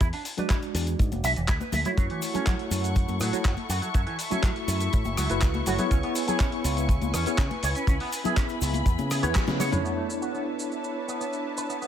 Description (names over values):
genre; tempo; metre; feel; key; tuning
nu-disco, nu disco; 122 BPM; 4/4; straight; B dorian; A4 = 440 Hz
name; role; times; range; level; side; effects
electric guitar with an envelope filter; riff; 0.0-11.9 s; E3 to E5; -32 LUFS; right 4 dB; wide subtle chorus, low-pass filter, tape echo
picked electric bass with an envelope filter; bass; 0.0-9.8 s; E1 to C#3; -29 LUFS; equal; sidechain pumping
dusty soul sampler-style drum kit; drums; 0.0-11.9 s; handclaps, hi-hat, rim click, shaker, snare drum, toms; -33 LUFS; equal; none
kick drum; drums; 0.0-9.5 s; none; -24 LUFS; equal; none
egg shaker and congas; percussion; 0.0-9.8 s; none; -35 LUFS; left 4 dB; none
bright tine electric piano; accompaniment; 0.4-11.9 s; G#3 to E5; -31 LUFS; equal; medium stereo tremolo, sidechain pumping, low-pass filter, tape echo
dark studio string section; sustained chords; 2.0-11.9 s; D4 to C#6; -33 LUFS; left 2 dB; sidechain pumping
room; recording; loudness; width
light reverb, small room ambience; none; -24 LUFS; side -10 dB against mid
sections
0.0-9.8 A section; 9.8-11.9 B section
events
filter sweep on tine electric piano 0.0-9.8; drum fill 9.4-9.8; band accent 9.4; filter sweep on clean electric guitar 9.8-11.9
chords
0.0 E9; 2.0 F#m7; 5.9 C#m7; 9.8 Bm11